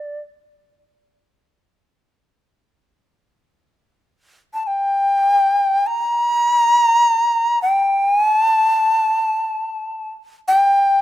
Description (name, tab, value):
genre	japanese traditional, Japanese chamber music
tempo	free time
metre	none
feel	none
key	unclear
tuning	A4 = 441 Hz
part	breathy bright long shakuhachi	solo	0.0-11.0 s	D5 to Bb5	-14 LUFS	equal	none
room	light reverb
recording	close, detailed microphones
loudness	-14 LUFS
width	side -14 dB against mid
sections	0.0-11.0 A section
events	none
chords	none